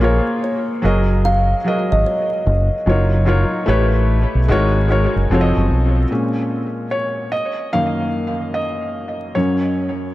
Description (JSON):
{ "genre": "lo-fi hip hop", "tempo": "74 BPM", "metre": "4/4", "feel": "swing 65% on 16ths", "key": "unclear", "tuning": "A4 = 440 Hz", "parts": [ { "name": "felt-muted upright piano", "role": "accompaniment", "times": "0.0-10.1 s", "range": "Gb2 to F5", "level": "-18 LUFS", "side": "left 1 dB", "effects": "cassette tape, tape echo" }, { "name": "deep dub fingered electric bass", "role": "bass", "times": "0.0-6.0 s", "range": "F1 to B1", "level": "-16 LUFS", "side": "equal", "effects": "none" }, { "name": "kalimba", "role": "melody", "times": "0.4-5.3 s", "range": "Db5 to F5", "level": "-22 LUFS", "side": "right 1 dB", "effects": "tape echo" } ], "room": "light reverb", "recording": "echo-heavy mix, vinyl crackle", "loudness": "-15 LUFS", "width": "side -16 dB against mid", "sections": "0.0-6.1 A section; 6.1-10.1 B section", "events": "felt piano solo 6.1-10.1", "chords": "0.0 Bbm7; 0.8 Gb6; 2.9 Ebm9/Gb; 3.7 A9; 4.5 Ab7sus4; 5.3 F7b9; 6.1 Bbm7; 7.3 Gb6; 9.3 Gb5" }